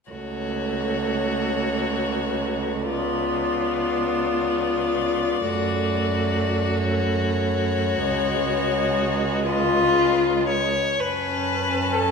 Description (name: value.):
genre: classical, slow romantic movement for string quartet.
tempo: 37-48 BPM (dotted quarters).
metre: 6/8.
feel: rubato.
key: F# minor.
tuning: A4 = 440 Hz.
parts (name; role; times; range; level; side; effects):
rich violin; melody; 0.1-12.1 s; B4 to A5; -28 LUFS; left 8 dB; none.
rich violin; second line; 0.1-12.1 s; E#4 to C#5; -24 LUFS; left 4 dB; none.
rich viola; accompaniment; 0.1-12.1 s; G#3 to C#4; -27 LUFS; right 3 dB; none.
rich cello; bass; 0.1-12.1 s; C#2 to F#2; -27 LUFS; right 4 dB; none.
room: wet scoring stage reverb, RT60 1.9 s.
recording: minimal, uncompressed stereo recording.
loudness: -20 LUFS.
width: side -5 dB against mid.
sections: 0.1-11.0 A section; 11.0-12.1 B section.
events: none.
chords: 0.1 F#m/C#; 2.9 C#7b9; 5.5 F#m; 8.1 C#7; 11.0 F#m.